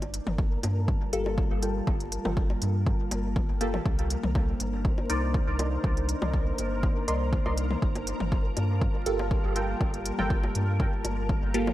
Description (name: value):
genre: dub techno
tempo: 121 BPM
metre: 4/4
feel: straight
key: G minor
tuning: A4 = 440 Hz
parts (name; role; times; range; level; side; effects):
- deep dark ambient pad; sustained chords; 0.0-11.7 s; G3 to A5; -35 LUFS; left 1 dB; chorus, built-in reverb, sidechain pumping
- soft dub sub bass; bass; 0.0-11.7 s; G1 to G2; -30 LUFS; equal; sidechain pumping
- electronic hi-hat; drums; 0.0-11.6 s; none; -35 LUFS; equal; none
- electronic bongos and toms; percussion; 0.0-11.7 s; none; -37 LUFS; left 2 dB; sidechain pumping on toms, sidechain pumping on perc, dub echo
- flickering grainy texture; texture; 0.2-11.7 s; Bb3 to Bb4; -40 LUFS; equal; built-in reverb, ensemble chorus, sidechain pumping
- electronic kick drum; drums; 0.4-11.4 s; none; -27 LUFS; equal; none
- filtered dub chord stab; stabs; 1.1-5.3, 9.1-11.7 s; Bb3 to D5; -33 LUFS; right 1 dB; phaser, sidechain pumping, dub echo
- filtered dub chord stab; riff; 1.6-2.4, 5.6-10.3 s; F4 to C6; -37 LUFS; right 2 dB; chorus, sidechain pumping, dub echo
room: light reverb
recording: bright 1980s-style digital production, vinyl crackle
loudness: -25 LUFS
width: side -14 dB against mid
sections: 0.0-11.7 A section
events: none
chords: 0.0 Gm9; 3.9 Cm9; 7.8 Gm9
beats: 0.39 0.88 1.38 | 1.87 2.37 2.87 3.36 | 3.86 4.35 4.85 5.34 | 5.84 6.34 6.83 7.33 | 7.82 8.32 8.81 9.31 | 9.81 10.30 10.80 11.29